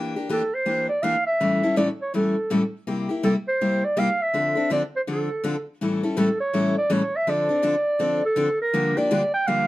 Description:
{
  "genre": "jazz",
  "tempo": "164 BPM",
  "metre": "4/4",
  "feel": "swing 61% on 8ths",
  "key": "D minor",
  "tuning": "A4 = 440 Hz",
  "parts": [
    { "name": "picked steel-string acoustic guitar", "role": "accompaniment", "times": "0.0-9.7 s", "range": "G2 to A4", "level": "-23 LUFS", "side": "left 2 dB", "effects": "none" },
    { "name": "breathy clarinet", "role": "melody", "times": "0.3-9.7 s", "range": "A4 to G5", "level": "-22 LUFS", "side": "right 1 dB", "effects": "none" }
  ],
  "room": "light reverb",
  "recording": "dark, warm production",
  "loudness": "-20 LUFS",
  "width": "side -16 dB against mid",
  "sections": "0.0-8.7 A section",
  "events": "none",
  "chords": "0.0 Em7b5; 1.4 A7; 2.9 C7; 4.3 Dm7; 5.8 A7; 7.3 Dm7; 8.7 Gm7",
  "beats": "0.30 0.67 1.04 | 1.40 1.77 2.14 2.50 | 2.87 3.24 3.60 3.97 | 4.34 4.70 5.07 5.44 | 5.80 6.17 6.54 6.90 | 7.27 7.63 8.00 8.37 | 8.73 9.10 9.46"
}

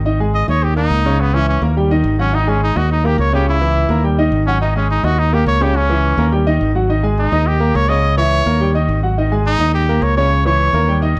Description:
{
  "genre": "latin",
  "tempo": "210 BPM",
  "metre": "4/4",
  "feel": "straight",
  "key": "unclear",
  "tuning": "A4 = 440 Hz",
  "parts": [
    { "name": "modern bright fingered electric bass", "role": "bass", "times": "0.0-11.2 s", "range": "G#1 to D#2", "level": "-18 LUFS", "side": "equal", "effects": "none" },
    { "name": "clear concert grand piano", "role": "accompaniment", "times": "0.1-11.2 s", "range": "C#3 to D#6", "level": "-21 LUFS", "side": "equal", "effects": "none" },
    { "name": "clear trumpet", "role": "melody", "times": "0.3-11.0 s", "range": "B3 to D#5", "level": "-21 LUFS", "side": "equal", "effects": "none" }
  ],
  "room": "light reverb",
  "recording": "none",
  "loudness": "-15 LUFS",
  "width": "mono",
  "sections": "0.1-11.2 A section",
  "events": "trumpet solo 0.1-11.2",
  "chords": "0.1 G#5; 0.6 D#5; 1.2 C#m; 1.8 D#; 2.3 G#5; 2.9 D#5; 3.5 C#m; 4.0 D#; 4.6 G#5; 5.2 D#5; 5.8 C#m; 6.3 D#; 6.9 G#5; 7.5 D#7; 8.0 C#m; 8.6 D#; 9.2 G#5; 9.7 D#7; 10.3 C#m",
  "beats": "| 0.05 0.34 0.62 0.91 | 1.19 1.48 1.76 2.05 | 2.33 2.62 2.90 3.19 | 3.47 3.76 4.04 4.33 | 4.61 4.90 5.18 5.47 | 5.75 6.04 6.32 6.61 | 6.89 7.18 7.46 7.75 | 8.03 8.32 8.60 8.89 | 9.17 9.46 9.74 10.03 | 10.31 10.60 10.88 11.17"
}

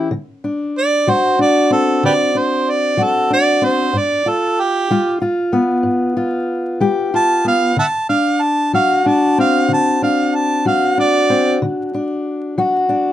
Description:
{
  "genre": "acoustic country blues, solo or duo",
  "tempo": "63 BPM (dotted quarters)",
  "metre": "12/8",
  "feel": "straight",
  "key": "D mixolydian",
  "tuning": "A4 = 440 Hz",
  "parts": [
    { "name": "fingerpicked steel-string acoustic guitar", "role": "accompaniment", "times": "0.0-13.1 s", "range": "G2 to G4", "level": "-16 LUFS", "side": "left 2 dB", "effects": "none" },
    { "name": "warm harmonica", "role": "melody", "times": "0.8-11.6 s", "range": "G4 to A5", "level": "-16 LUFS", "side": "right 3 dB", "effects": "none" }
  ],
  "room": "light reverb",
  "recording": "vinyl crackle",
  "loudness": "-14 LUFS",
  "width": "side -12 dB against mid",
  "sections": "0.1-13.1 A section",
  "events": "none",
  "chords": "0.1 D7; 3.9 G7; 7.8 D7",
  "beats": "| 0.12 1.07 2.03 2.99 | 3.94 4.90 5.86 6.82 | 7.77 8.73 9.69 10.65 | 11.61 12.56"
}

